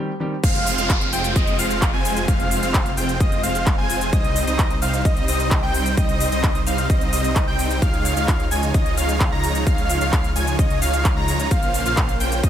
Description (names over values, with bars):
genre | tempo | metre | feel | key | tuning
EDM, festival progressive house | 130 BPM | 4/4 | straight | F minor | A4 = 441 Hz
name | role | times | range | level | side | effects
lush unison pad | sustained chords | 1.1-12.5 s | C3 to F4 | -31 LUFS | equal | chorus, phaser, sidechain pumping
wide unison lead | arpeggios | 0.4-12.5 s | Eb5 to Bb5 | -25 LUFS | equal | analog chorus, sidechain pumping, tape echo
supersaw chords | riff | 0.4-12.5 s | G3 to Bb5 | -25 LUFS | right 1 dB | sidechain pumping, tape echo
detuned saw bass | bass | 0.4-12.5 s | F1 to Db2 | -26 LUFS | equal | sidechain pumping
big-room dance drum kit | drums | 0.4-12.5 s | crash cymbal, handclaps, hi-hat, shaker | -27 LUFS | equal | overdrive
electronic kick drum | drums | 0.4-12.5 s | none | -20 LUFS | equal | overdrive, high-pass filter on kick
downlifter | sound effects | 0.4-4.1 s | none | -29 LUFS | equal | none
room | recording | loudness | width
light reverb | none | -17 LUFS | side -10 dB against mid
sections
0.4-12.5 A section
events
break 0.0-0.4; drop 0.4-12.5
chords
0.4 Fm; 4.1 Cm; 7.8 Dbadd9; 11.5 Bbmadd9